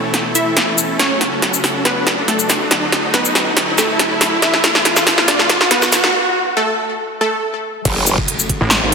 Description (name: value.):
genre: heavy wobble dubstep.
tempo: 140 BPM.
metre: 4/4.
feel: half-time.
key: F# minor.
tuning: A4 = 439 Hz.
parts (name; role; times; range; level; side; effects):
wide unison pluck; melody; 0.0-7.8 s; A3 to E5; -20 LUFS; equal; ping-pong delay.
supersaw chords; sustained chords; 0.0-8.9 s; B2 to A4; -24 LUFS; equal; sidechain pumping, low-pass filter.
riser and impact; sound effects; 0.0-8.9 s; none; -20 LUFS; right 1 dB; none.
big-room dance drum kit; drums; 0.1-8.9 s; crash cymbal, handclaps, hi-hat, shaker, snare drum; -15 LUFS; equal; overdrive, high-pass filter on snare, high-pass filter on hats, high-pass filter on perc, high-pass filter on cymbals, high-pass filter on room.
growl bass; bass; 7.9-8.2 s; F#1; -16 LUFS; equal; chorus, overdrive.
electronic kick drum; drums; 7.9-8.6 s; none; -21 LUFS; equal; overdrive.
snarling distorted saw bass; bass; 8.6-8.9 s; G#1 to A1; -16 LUFS; equal; distortion, overdrive.
room: wet lush hall reverb, RT60 2.2 s.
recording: dense, heavily limited modern master, high-pass filter.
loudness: -13 LUFS.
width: side -5 dB against mid.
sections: 0.0-7.9 A section; 7.9-8.9 B section.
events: build-up 0.0-7.9; drum fill 0.0-6.1; riser 0.0-6.1; break 6.1-7.9; drop 7.9-8.9; impact 7.9-8.9.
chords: 0.0 Esus4; 1.0 F#m; 2.7 D; 4.4 Esus4; 7.9 F#m.